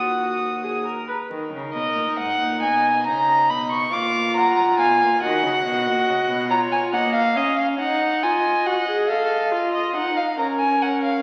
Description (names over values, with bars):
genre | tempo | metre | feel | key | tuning
classical, baroque-style fugue for string quartet | 46 BPM (dotted quarters) | 6/8 | straight | Eb minor | A4 = 440 Hz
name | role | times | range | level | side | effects
warm violin | melody | 0.0-11.2 s | Eb5 to Eb6 | -23 LUFS | equal | none
warm violin | second line | 0.0-11.2 s | Bb4 to Gb5 | -31 LUFS | equal | none
warm viola | accompaniment | 0.0-11.2 s | Bb3 to Cb5 | -27 LUFS | equal | none
rich cello | bass | 0.0-6.5 s | Eb2 to Eb3 | -33 LUFS | equal | none
room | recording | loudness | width
wet scoring stage reverb, RT60 1.7 s | very old 78 rpm record, vinyl crackle | -21 LUFS | mono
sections
0.0-1.3 A section; 1.3-11.2 B section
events
none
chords
0.0 Ebm; 2.6 Abm/Cb; 3.9 Bb7; 5.2 Ebm; 6.5 Bbm; 7.8 Ebm; 9.1 F7; 10.4 Bbm/Db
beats
| 1.30 2.62 | 3.92 5.21 | 6.50 7.79 | 9.09 10.39